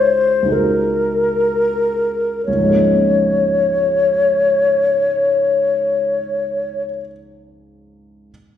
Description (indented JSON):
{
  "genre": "classical, impressionist duo for flute and grand piano",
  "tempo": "28-36 BPM (dotted quarters)",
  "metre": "6/8",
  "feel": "rubato",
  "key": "Db major",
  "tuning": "A4 = 440 Hz",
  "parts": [
    { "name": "mellow hollow silver concert flute", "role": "melody", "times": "0.0-6.8 s", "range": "Bb4 to Db5", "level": "-15 LUFS", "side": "left 2 dB", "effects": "none" },
    { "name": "warm baby grand piano", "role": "accompaniment", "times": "0.0-8.3 s", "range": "Db2 to Bb4", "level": "-21 LUFS", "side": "right 2 dB", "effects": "none" }
  ],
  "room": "wet recital hall reverb, RT60 1.3 s",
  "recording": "heard from further back in the room",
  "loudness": "-14 LUFS",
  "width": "side -10 dB against mid",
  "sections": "0.0-2.5 A section; 2.5-6.1 B section",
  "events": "slowing down 0.0-2.5",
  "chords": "0.0 Ab11/Db; 2.5 Db6",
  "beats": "0.53 | 2.47 4.28"
}